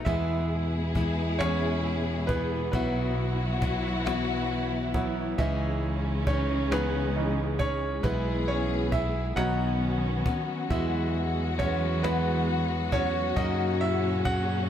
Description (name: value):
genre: six-eight pop ballad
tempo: 45 BPM (dotted quarters)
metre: 6/8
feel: straight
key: E major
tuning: A4 = 440 Hz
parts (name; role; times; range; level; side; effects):
- bright concert grand piano; accompaniment; 0.0-14.7 s; E3 to F#5; -31 LUFS; right 4 dB; none
- warm studio string section; sustained chords; 0.0-14.7 s; A#2 to G#4; -31 LUFS; left 2 dB; none
- picked steel-string acoustic guitar; arpeggios; 0.0-14.7 s; F#2 to G#4; -34 LUFS; left 6 dB; none
- fingered electric bass; bass; 0.0-14.7 s; B1 to F#2; -30 LUFS; equal; none
- cajon; drums; 0.1-14.5 s; none; -32 LUFS; equal; none
room: studio reverb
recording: none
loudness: -25 LUFS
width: side -10 dB against mid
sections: 0.1-14.7 A section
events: grand piano solo 0.1-14.7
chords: 0.1 E; 2.7 Bsus4; 5.4 C#madd9; 8.0 E/B; 9.4 Badd9; 10.7 Eadd9; 13.4 F#